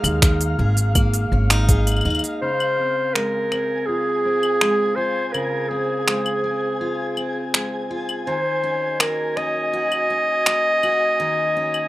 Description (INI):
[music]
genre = folktronica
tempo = 82 BPM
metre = 4/4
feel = straight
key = unclear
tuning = A4 = 440 Hz
[part]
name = picked steel-string acoustic guitar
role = arpeggios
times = 0.0-11.9 s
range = Db3 to Ab4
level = -28 LUFS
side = equal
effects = low-pass filter, tape echo
[part]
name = upright bass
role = bass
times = 0.0-2.2 s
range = Ab1 to Eb2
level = -19 LUFS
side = equal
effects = none
[part]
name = organic electronic drum kit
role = drums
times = 0.0-11.9 s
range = claves, finger snaps, hi-hat, shaker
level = -21 LUFS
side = equal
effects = overdrive
[part]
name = flickering grainy texture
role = texture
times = 0.0-11.9 s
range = F5 to Ab6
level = -31 LUFS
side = equal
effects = built-in reverb, plate reverb
[part]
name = electronic kick drum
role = drums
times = 0.2-1.8 s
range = none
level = -17 LUFS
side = equal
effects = overdrive
[part]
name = bright clarinet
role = melody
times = 2.4-11.9 s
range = Ab4 to Eb5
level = -20 LUFS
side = equal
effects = vintage 12-bit sampler grit
[part]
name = warbly tape-like pad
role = sustained chords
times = 3.9-11.9 s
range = Gb4 to F5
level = -33 LUFS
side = left 2 dB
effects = chorus, built-in reverb, vintage 12-bit sampler grit, plate reverb
[sound]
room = moderate small room reverb, RT60 0.6 s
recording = rough home demo mix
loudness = -18 LUFS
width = side -16 dB against mid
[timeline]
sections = 0.0-2.4 A section; 2.4-11.9 B section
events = filter sweep on steel-string acoustic guitar 2.4-11.9; filter sweep on ambient pad 2.4-11.9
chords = 0.0 Absus2; 2.4 Dbmaj7; 8.3 Ebm7